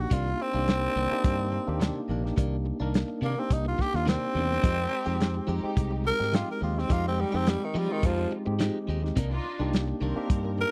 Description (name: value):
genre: straight-eighth soul blues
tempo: 106 BPM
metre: 4/4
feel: swing 53% on 16ths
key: C minor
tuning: A4 = 440 Hz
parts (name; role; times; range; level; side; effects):
- growling tenor saxophone; melody; 0.0-10.7 s; Eb3 to Bb4; -32 LUFS; equal; none
- bright tine electric piano; accompaniment; 0.0-10.7 s; Ab3 to Bb4; -36 LUFS; equal; none
- fingered electric bass; bass; 0.0-10.6 s; Bb1 to F3; -32 LUFS; equal; none
- direct-recorded clean electric guitar; stabs; 0.1-10.6 s; C3 to G4; -38 LUFS; equal; phaser
- warm soul drum kit; drums; 0.1-10.4 s; hi-hat, kick drum, snare drum; -29 LUFS; equal; none
- dark studio string section; sustained chords; 4.6-10.6 s; Ab3 to Bb4; -41 LUFS; equal; none
room: little or no reverb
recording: dry, close 1970s-style studio recording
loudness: -28 LUFS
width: mono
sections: 0.0-10.7 A section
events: tenor saxophone solo 0.0-10.7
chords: 0.0 Cm9; 4.6 Fm9; 9.2 Cm9